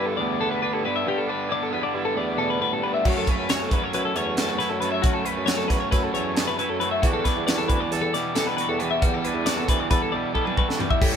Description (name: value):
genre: math rock and midwest emo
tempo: 272 BPM (eighths)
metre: 9/8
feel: straight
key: unclear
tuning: A4 = 440 Hz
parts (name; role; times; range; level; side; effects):
- twangy electric guitar; accompaniment; 0.0-11.2 s; D2 to A4; -29 LUFS; right 7 dB; none
- twelve-string electric guitar; arpeggios; 0.0-11.2 s; F#4 to E5; -26 LUFS; left 5 dB; none
- raw garage guitar; riff; 0.0-11.2 s; F#2 to E4; -29 LUFS; right 1 dB; overdrive, spring reverb
- mellow bassoon; bass; 0.0-11.2 s; D2 to A2; -31 LUFS; equal; none
- crisp fusion drum kit; drums; 3.1-11.1 s; crash cymbal, hi-hat, kick drum, snare drum, toms; -24 LUFS; equal; none
room: light reverb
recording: band playing live in one room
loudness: -21 LUFS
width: side -8 dB against mid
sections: 0.0-11.0 A section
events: drum fill 10.3-11.0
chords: 0.0 G69; 3.0 F#m7; 7.0 Em9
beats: 0.18 0.40 0.62 0.84 | 1.06 1.28 1.50 1.73 1.95 2.17 2.39 2.61 2.83 | 3.05 3.27 3.49 3.71 3.93 4.15 4.37 4.59 4.82 | 5.04 5.26 5.48 5.70 5.92 6.14 6.36 6.58 6.80 | 7.03 7.25 7.47 7.69 7.91 8.13 8.35 8.57 8.79 | 9.01 9.23 9.46 9.68 9.90 10.12 10.34 10.56 10.78 | 11.00